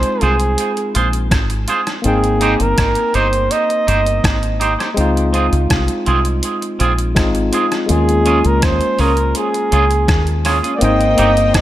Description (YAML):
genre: lovers rock reggae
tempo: 82 BPM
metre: 4/4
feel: straight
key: Ab major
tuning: A4 = 440 Hz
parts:
  - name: warm flugelhorn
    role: melody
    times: 0.0-11.6 s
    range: Ab4 to Eb5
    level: -18 LUFS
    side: right 2 dB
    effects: tape echo
  - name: barky tine electric piano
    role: accompaniment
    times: 0.0-11.6 s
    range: Ab3 to G5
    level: -20 LUFS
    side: left 3 dB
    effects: overdrive, tape echo
  - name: twangy electric guitar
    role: stabs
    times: 0.0-11.3 s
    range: C4 to C5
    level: -21 LUFS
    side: right 3 dB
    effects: tape echo
  - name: deep dub fingered electric bass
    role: bass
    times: 0.0-11.6 s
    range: G1 to Eb2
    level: -17 LUFS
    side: equal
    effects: none
  - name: detuned 8-bit digital drum machine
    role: drums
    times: 0.0-11.6 s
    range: hi-hat, kick drum, rim click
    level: -20 LUFS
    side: equal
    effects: none
  - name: warm studio string section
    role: second line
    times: 10.8-11.6 s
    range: Eb4 to G5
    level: -22 LUFS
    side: left 5 dB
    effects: none
room: light reverb, digital ambience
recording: none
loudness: -13 LUFS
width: side -13 dB against mid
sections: 0.0-10.8 A section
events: none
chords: 0.0 Dbmaj7 (rootless); 2.0 Abmaj7; 5.0 Dbmaj7; 7.9 Eb9sus4; 10.8 Abmaj7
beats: 0.58 1.31 | 2.04 2.78 3.51 4.24 | 4.97 5.70 6.43 7.16 | 7.89 8.62 9.35 10.08 | 10.81 11.54